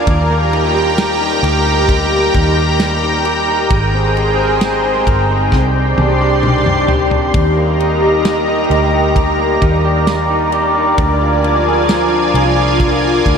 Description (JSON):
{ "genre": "dream pop", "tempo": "66 BPM", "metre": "4/4", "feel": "straight", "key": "unclear", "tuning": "A4 = 440 Hz", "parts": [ { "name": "lush unison pad", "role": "sustained chords", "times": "0.0-13.4 s", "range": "F4 to C6", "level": "-14 LUFS", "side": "right 1 dB", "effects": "chorus, phaser" }, { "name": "electric guitar through a small old amp", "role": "arpeggios", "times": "0.0-13.4 s", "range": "C3 to Bb4", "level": "-19 LUFS", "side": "left 2 dB", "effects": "lush chorus, diffuse ambient delay" }, { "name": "vintage muted fingered electric bass", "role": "bass", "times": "0.0-13.4 s", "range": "G1 to Eb2", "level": "-18 LUFS", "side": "equal", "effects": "none" }, { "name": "loose indie drum kit", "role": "drums", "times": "0.1-13.4 s", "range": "kick drum, ride cymbal, snare drum, tambourine, toms", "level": "-19 LUFS", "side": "equal", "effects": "none" } ], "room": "wet huge ambient reverb, RT60 7.9 s", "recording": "dreamy mix soaked in reverb", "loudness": "-11 LUFS", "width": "side -6 dB against mid", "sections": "0.0-7.3 A section; 7.3-13.4 A section", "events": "drum fill 5.5-7.3", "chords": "0.1 Eb; 3.7 Abadd9; 5.5 Cmadd9; 7.3 Eb; 11.0 Bb7" }